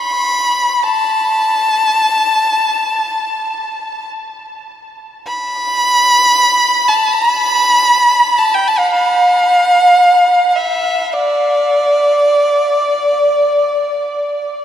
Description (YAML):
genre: Arabic maqam ensemble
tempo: free time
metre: none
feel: none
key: D maqam rast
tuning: A4 = 439 Hz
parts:
  - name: rich violin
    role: solo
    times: 0.0-14.6 s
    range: D5 to B5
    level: -11 LUFS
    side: equal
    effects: none
room: wet huge ambient reverb, RT60 7.6 s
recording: in a vast, echoing space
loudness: -11 LUFS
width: side -10 dB against mid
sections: 0.0-14.6 A section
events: none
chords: none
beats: free time